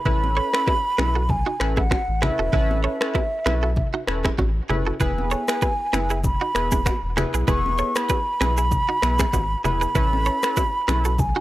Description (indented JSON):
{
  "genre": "afrobeats",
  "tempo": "97 BPM",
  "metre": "4/4",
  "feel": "swing 55% on 16ths",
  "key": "E major",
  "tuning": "A4 = 436 Hz",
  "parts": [
    { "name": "mellow hollow concert flute", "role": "melody", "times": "0.0-11.4 s", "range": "E5 to C#6", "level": "-24 LUFS", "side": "right 1 dB", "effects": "none" },
    { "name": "warm analog keys", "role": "accompaniment", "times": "0.1-11.1 s", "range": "B3 to B4", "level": "-29 LUFS", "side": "left 1 dB", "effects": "chorus" },
    { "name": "direct-recorded clean electric guitar", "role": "riff", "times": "0.1-11.4 s", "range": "B3 to C#5", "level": "-29 LUFS", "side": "right 5 dB", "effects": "none" },
    { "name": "sub bass with octave", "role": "bass", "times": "0.1-11.3 s", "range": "E1 to B1", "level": "-24 LUFS", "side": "equal", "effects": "none" },
    { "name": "afro-pop drum kit", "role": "drums", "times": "0.1-11.3 s", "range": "finger snaps, kick drum, rim click, shaker", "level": "-24 LUFS", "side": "equal", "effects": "none" },
    { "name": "congas and bongos", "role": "percussion", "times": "0.1-11.3 s", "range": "none", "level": "-30 LUFS", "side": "left 1 dB", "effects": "none" }
  ],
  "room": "little or no reverb",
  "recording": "dry, gritty hardware recording",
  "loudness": "-19 LUFS",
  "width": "side -16 dB against mid",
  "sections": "0.0-11.4 A section",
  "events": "break 0.0-5.0",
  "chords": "0.0 E"
}